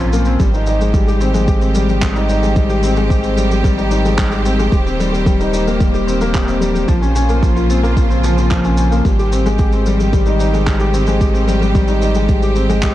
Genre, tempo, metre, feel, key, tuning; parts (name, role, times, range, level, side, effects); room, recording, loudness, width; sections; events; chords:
piano and strings electronica; 111 BPM; 4/4; straight; Ab major; A4 = 440 Hz
rich symphonic string section; sustained chords; 0.0-12.9 s; Db3 to C5; -23 LUFS; right 2 dB; sidechain pumping
felt-muted upright piano; riff; 0.0-12.9 s; F3 to G4; -17 LUFS; left 2 dB; tape echo
warm sub bass; bass; 0.0-12.9 s; Eb1 to Bb1; -17 LUFS; equal; tube saturation, sidechain pumping
shaker and handclaps; drums; 0.1-12.9 s; -29 LUFS; right 1 dB
electronic kick drum; drums; 0.4-12.9 s; -16 LUFS; equal
studio reverb; dark, warm production; -12 LUFS; side -14 dB against mid
0.0-12.9 A section
0.4 Abmaj7; 4.7 Eb6; 6.9 Bbmadd9; 9.0 Abmaj7